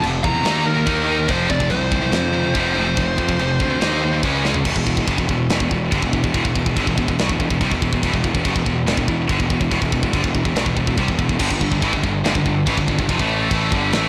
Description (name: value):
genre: heavy metal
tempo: 142 BPM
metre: 4/4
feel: straight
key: E phrygian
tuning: A4 = 438 Hz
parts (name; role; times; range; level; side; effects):
- heavy high-gain guitar; riff; 0.0-4.7, 11.4-14.1 s; F2 to D#4; -27 LUFS; equal; distortion
- scooped high-gain guitar; riff; 0.0-14.1 s; E2 to D#4; -24 LUFS; equal; distortion
- fuzz picked electric bass; bass; 0.0-14.1 s; E1 to F2; -25 LUFS; equal; overdrive
- tight metal drum kit; drums; 0.0-14.0 s; china cymbal, crash cymbal, kick drum, snare drum, toms; -25 LUFS; equal; none
- high-gain lead guitar; melody; 0.2-4.2 s; A#4 to A#5; -25 LUFS; equal; distortion, digital delay
room: small room ambience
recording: blown-out, overdriven recording, overdrive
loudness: -19 LUFS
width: mono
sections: 0.0-4.7 A section; 4.7-14.1 B section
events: drum fill 4.4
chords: 0.4 D#5; 1.3 F5; 3.8 D#5; 4.2 C#5; 4.7 Em; 11.4 G5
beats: 0.02 0.45 0.87 | 1.29 1.71 2.13 2.55 | 2.97 3.39 3.81 4.23 | 4.65 5.08 5.50 5.92 | 6.34 6.76 7.18 7.60 | 8.02 8.45 8.87 9.29 | 9.71 10.13 10.55 10.97 | 11.40 11.82 12.24 12.66 | 13.08 13.51 13.93